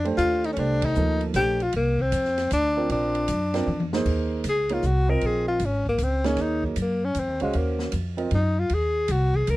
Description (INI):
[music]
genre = modal jazz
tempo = 155 BPM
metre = 3/4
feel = swing 66% on 8ths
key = C dorian, Eb dorian from 4.1 s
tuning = A4 = 444 Hz
[part]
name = breathy tenor saxophone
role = melody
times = 0.0-9.6 s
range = Gb3 to Bb4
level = -24 LUFS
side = left 2 dB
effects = none
[part]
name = warm grand piano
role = accompaniment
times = 0.0-8.3 s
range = F3 to F5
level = -28 LUFS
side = right 4 dB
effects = none
[part]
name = upright bass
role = bass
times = 0.0-9.6 s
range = Ab1 to Gb2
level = -26 LUFS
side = equal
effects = none
[part]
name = open jazz drum kit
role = drums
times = 0.1-9.6 s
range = crash cymbal, hi-hat, kick drum, ride cymbal, snare drum, toms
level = -36 LUFS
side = equal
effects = none
[sound]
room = light reverb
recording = dry, close 1970s-style studio recording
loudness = -22 LUFS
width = side -18 dB against mid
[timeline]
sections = 0.0-4.1 A section; 4.1-9.6 B section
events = band accent 0.8; drum fill 3.7-4.1; tenor saxophone solo 4.1-9.6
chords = 0.0 Cm11; 2.9 Bb(b13); 4.1 Ebm11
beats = 0.19 | 0.57 0.96 1.35 | 1.74 2.12 2.51 | 2.90 3.28 3.67 | 4.06 4.45 4.83 | 5.22 5.61 5.99 | 6.38 6.77 7.15 | 7.54 7.93 8.31 | 8.70 9.08 9.47